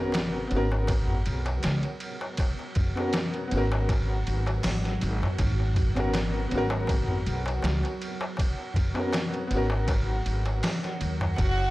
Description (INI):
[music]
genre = trip hop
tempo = 80 BPM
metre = 4/4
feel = swing 54% on 16ths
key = G# minor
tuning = A4 = 445 Hz
[part]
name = felt-muted upright piano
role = accompaniment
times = 0.0-11.4 s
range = B3 to A#4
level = -31 LUFS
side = left 1 dB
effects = tremolo, tape echo
[part]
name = upright bass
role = bass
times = 0.0-11.7 s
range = F#1 to D#2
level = -28 LUFS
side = equal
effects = tube saturation
[part]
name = bowed-like drone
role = texture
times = 1.1-11.7 s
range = F#3 to F#4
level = -39 LUFS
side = right 1 dB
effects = built-in reverb, phaser
[part]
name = trip hop sampler-style drum kit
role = drums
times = 0.1-11.6 s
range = hi-hat, kick drum, ride cymbal, snare drum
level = -30 LUFS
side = equal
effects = overdrive
[part]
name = darbuka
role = percussion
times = 0.1-11.7 s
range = none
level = -33 LUFS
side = equal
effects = none
[part]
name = warm chamber violin section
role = sustained chords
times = 11.4-11.7 s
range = F#4 to F#5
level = -28 LUFS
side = right 1 dB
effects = none
[sound]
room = small room ambience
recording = dry, gritty hardware recording, cassette tape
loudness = -25 LUFS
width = side -18 dB against mid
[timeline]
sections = 0.0-11.7 A section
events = none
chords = 0.0 G#m11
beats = 0.14 0.89 1.64 | 2.39 3.14 3.89 4.64 | 5.39 6.14 6.89 7.64 | 8.39 9.14 9.89 10.64 | 11.39